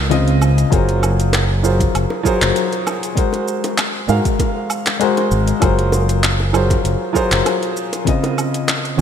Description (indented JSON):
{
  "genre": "sunset chillout",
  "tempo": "98 BPM",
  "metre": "4/4",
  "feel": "swing 54% on 16ths",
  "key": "Gb lydian",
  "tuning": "A4 = 440 Hz",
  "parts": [
    { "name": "dark concert grand piano", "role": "accompaniment", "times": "0.0-9.0 s", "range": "Db3 to Ab5", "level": "-18 LUFS", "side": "left 1 dB", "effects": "auto-pan, ping-pong delay" },
    { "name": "fingered electric bass", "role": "bass", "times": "0.0-9.0 s", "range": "Gb1 to Ab2", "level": "-17 LUFS", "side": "equal", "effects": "none" },
    { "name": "deep house drum kit", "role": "drums", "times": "0.1-9.0 s", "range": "handclaps, hi-hat, shaker, woodblock", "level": "-22 LUFS", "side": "right 1 dB", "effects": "gated reverb" },
    { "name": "bongos", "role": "percussion", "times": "0.4-9.0 s", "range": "none", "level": "-29 LUFS", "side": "equal", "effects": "none" },
    { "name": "electronic kick drum", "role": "drums", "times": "0.7-8.2 s", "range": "none", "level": "-18 LUFS", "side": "equal", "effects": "none" }
  ],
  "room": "moderate lush hall reverb, RT60 2.8 s",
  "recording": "bright 1980s-style digital production",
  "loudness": "-14 LUFS",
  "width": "side -8 dB against mid",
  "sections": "0.0-9.0 A section",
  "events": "none",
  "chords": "0.0 Dbmaj9; 0.7 Gbmaj9#11; 3.2 Ab9; 5.6 Gbmaj9#11; 8.1 Dbmaj9",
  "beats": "0.11 | 0.72 1.33 1.95 2.56 | 3.17 3.78 4.39 5.01 | 5.62 6.23 6.84 7.46 | 8.07 8.68"
}